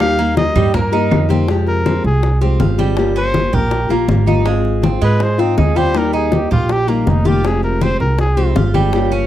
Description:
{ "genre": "latin, Cuban son and guajira", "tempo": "161 BPM", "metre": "4/4", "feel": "straight", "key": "F minor", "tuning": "A4 = 440 Hz", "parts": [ { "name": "warm trumpet", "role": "melody", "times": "0.0-8.5 s", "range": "Bb3 to F5", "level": "-20 LUFS", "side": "left 1 dB", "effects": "none" }, { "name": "nylon-string guitar", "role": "accompaniment", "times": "0.0-9.3 s", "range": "C3 to G4", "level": "-19 LUFS", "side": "left 5 dB", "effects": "none" }, { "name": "Cuban tres", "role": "arpeggios", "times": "0.0-9.3 s", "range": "G3 to G4", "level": "-21 LUFS", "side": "right 7 dB", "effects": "none" }, { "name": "upright bass", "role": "bass", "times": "0.0-9.3 s", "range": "F1 to Ab2", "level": "-17 LUFS", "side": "right 1 dB", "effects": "none" }, { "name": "bongos", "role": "percussion", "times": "0.0-9.3 s", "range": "none", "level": "-24 LUFS", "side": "left 6 dB", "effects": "none" }, { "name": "claves", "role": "percussion", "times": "0.0-1.3 s", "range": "none", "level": "-31 LUFS", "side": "right 17 dB", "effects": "none" }, { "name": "congas", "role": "percussion", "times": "0.0-9.3 s", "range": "none", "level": "-20 LUFS", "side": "left 1 dB", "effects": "none" } ], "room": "little or no reverb", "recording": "dry, close 1970s-style studio recording", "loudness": "-12 LUFS", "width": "side -12 dB against mid", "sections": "0.0-1.5 A section; 1.5-9.3 B section", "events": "trumpet solo 1.5-9.3", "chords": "0.0 Eb; 1.5 Fmadd9; 3.0 Gm7b5; 4.5 Ab6; 6.0 Eb; 7.4 Fmadd9" }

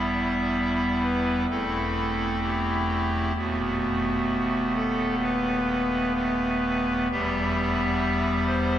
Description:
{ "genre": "classical, chorale-style piece for pipe organ", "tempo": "64 BPM", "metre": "4/4", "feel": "rubato", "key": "E minor", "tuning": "A4 = 441 Hz", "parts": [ { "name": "pipe organ, clarinet reed", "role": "solo", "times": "0.0-8.8 s", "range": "D#1 to E5", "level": "-23 LUFS", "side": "equal", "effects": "none" } ], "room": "wet cathedral reverb, RT60 4.7 s", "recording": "heard from further back in the room", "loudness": "-23 LUFS", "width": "side -11 dB against mid", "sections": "0.0-8.8 A section", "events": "none", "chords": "0.0 Em; 1.5 Am/E; 3.4 B7/D#; 7.1 Em" }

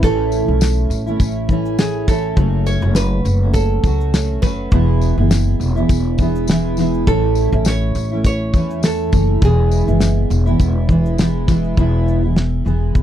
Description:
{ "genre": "acoustic pop", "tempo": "102 BPM", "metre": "4/4", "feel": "swing 55% on 16ths", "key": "A major", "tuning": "A4 = 440 Hz", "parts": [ { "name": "nylon-string guitar", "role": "melody", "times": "0.0-11.5 s", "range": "G#4 to C#5", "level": "-22 LUFS", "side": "right 4 dB", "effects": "none" }, { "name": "fingerpicked steel-string acoustic guitar", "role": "accompaniment", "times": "0.0-13.0 s", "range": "E2 to F#4", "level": "-19 LUFS", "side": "equal", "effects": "double-tracked left and right" }, { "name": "upright bass", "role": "bass", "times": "0.0-13.0 s", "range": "E1 to E2", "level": "-18 LUFS", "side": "equal", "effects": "none" }, { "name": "cloth-damped thuddy drum kit", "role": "drums", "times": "0.0-13.0 s", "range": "kick drum, shaker, snare drum", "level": "-15 LUFS", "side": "equal", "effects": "none" }, { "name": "tambourine", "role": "percussion", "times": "0.0-11.6 s", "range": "none", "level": "-34 LUFS", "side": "left 10 dB", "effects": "none" } ], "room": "little or no reverb", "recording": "dry, close 1970s-style studio recording", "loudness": "-14 LUFS", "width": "side -11 dB against mid", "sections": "0.0-11.8 A section; 11.8-13.0 B section", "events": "none", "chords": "0.0 A; 2.4 F#m; 4.7 E; 7.1 A; 9.4 E" }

